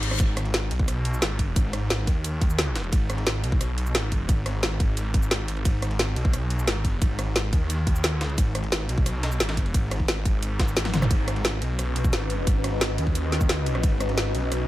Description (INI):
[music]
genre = dark technical drum and bass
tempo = 176 BPM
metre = 4/4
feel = straight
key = G# minor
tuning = A4 = 440 Hz
[part]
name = snarling distorted saw bass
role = bass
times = 0.0-14.7 s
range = G#1 to D#2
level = -26 LUFS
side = equal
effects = distortion, overdrive
[part]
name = drum and bass drum kit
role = drums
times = 0.0-14.6 s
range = hi-hat, rim click, shaker, snare drum, toms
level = -27 LUFS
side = equal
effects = none
[part]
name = jungle sampler-style drum kit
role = drums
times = 0.0-14.6 s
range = ride cymbal, snare drum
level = -37 LUFS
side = right 1 dB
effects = none
[part]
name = reverse cymbal and zap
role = sound effects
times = 0.0-0.2, 11.0-11.1 s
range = none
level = -34 LUFS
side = left 3 dB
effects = none
[part]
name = electronic kick drum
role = drums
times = 0.2-13.9 s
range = none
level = -23 LUFS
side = equal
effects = none
[part]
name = ethereal airy pad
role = texture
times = 11.6-14.7 s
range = C#4 to F#5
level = -31 LUFS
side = left 2 dB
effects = ensemble chorus, built-in reverb, sidechain pumping
[sound]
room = little or no reverb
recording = none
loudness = -22 LUFS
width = side -16 dB against mid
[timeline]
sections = 0.0-11.1 A section; 11.1-14.7 A section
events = break 0.0; drop 0.0-11.1, 11.1-14.7; reverse cymbal 0.0; drum fill 10.9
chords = 0.0 G#m